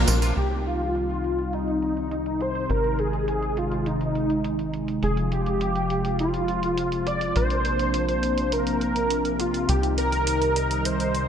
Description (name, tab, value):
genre	synthwave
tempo	103 BPM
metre	4/4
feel	straight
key	C minor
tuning	A4 = 441 Hz
part	wide unison lead	melody	0.0-11.3 s	Eb4 to D5	-26 LUFS	equal	ensemble chorus, digital delay
part	phased analog pad	sustained chords	0.0-11.3 s	C3 to F4	-27 LUFS	left 1 dB	phaser, chorus
part	tight sequencer bass	bass	0.0-11.3 s	F1 to C2	-28 LUFS	equal	none
part	clean 12-bit digital drum machine	drums	0.1-11.3 s	crash cymbal, hi-hat, tambourine	-32 LUFS	right 2 dB	low-pass filter on hats, low-pass filter on perc, low-pass filter on snare, low-pass filter on cymbals
room	moderate lush hall reverb, RT60 2.8 s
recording	bright 1980s-style digital production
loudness	-22 LUFS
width	side -8 dB against mid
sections	0.4-11.3 A section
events	filter sweep on drum 0.4-11.3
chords	0.4 Cm; 2.7 Ab; 5.0 Fm; 7.4 Bbadd9; 9.7 Cm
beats	| 0.37 0.95 1.53 2.12 | 2.70 3.28 3.86 4.45 | 5.03 5.61 6.19 6.78 | 7.36 7.94 8.52 9.11 | 9.69 10.27 10.85